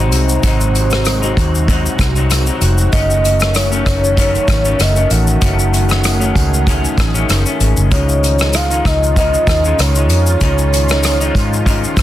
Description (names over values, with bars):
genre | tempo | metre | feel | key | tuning
indie pop, bedroom pop | 96 BPM | 4/4 | swing 55% on 16ths | Db major | A4 = 443 Hz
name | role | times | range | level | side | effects
soft octave-layered synth lead | melody | 0.0-11.6 s | C5 to Gb5 | -19 LUFS | right 1 dB | tremolo, lush chorus
electric guitar through a small old amp | accompaniment | 0.0-12.0 s | Gb2 to Eb4 | -21 LUFS | left 4 dB | wide subtle chorus, warbly pitch drift
lush unison pad | sustained chords | 0.0-12.0 s | C3 to Ab4 | -24 LUFS | right 1 dB | chorus, phaser
vintage muted fingered electric bass | bass | 0.0-12.0 s | F1 to Ab2 | -15 LUFS | equal | none
unplugged drum kit | drums | 0.1-12.0 s | hi-hat, kick drum, rim click, shaker | -17 LUFS | equal | soft clipping on snare
tambourine | percussion | 0.1-12.0 s | none | -31 LUFS | right 5 dB | none
room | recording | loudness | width
light reverb | dense, heavily limited modern master | -11 LUFS | side -13 dB against mid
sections
0.0-12.0 A section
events
none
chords
0.0 Ab7; 2.9 Gbm6; 7.9 Dbadd9